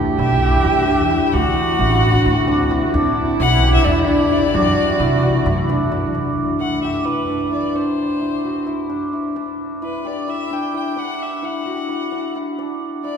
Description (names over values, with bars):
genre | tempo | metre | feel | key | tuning
contemporary instrumental, chamber music in an uneven meter | 262 BPM (eighths) | 7/8 | straight | E minor | A4 = 440 Hz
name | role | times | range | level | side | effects
dark cello | second line | 0.0-5.9 s | E4 to G4 | -22 LUFS | right 5 dB | none
shimmering ambient pad | sustained chords | 0.0-6.1 s | D3 to G4 | -26 LUFS | left 2 dB | chorus, built-in reverb
hammered dulcimer | arpeggios | 0.0-13.2 s | D4 to G4 | -21 LUFS | equal | none
clear violin | melody | 0.2-13.2 s | B4 to G5 | -24 LUFS | left 5 dB | none
upright bass | bass | 0.2-6.0 s | A1 to C3 | -20 LUFS | right 1 dB | none
room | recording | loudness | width
wet cathedral reverb, RT60 6.4 s | recorded in a church or concert hall | -16 LUFS | side -7 dB against mid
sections
0.0-6.1 A section; 6.1-13.2 B section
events
none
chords
0.0 Em7; 1.3 D7; 2.9 Em7; 4.5 F#m7b5; 6.1 Em7; 12.6 E7(no3)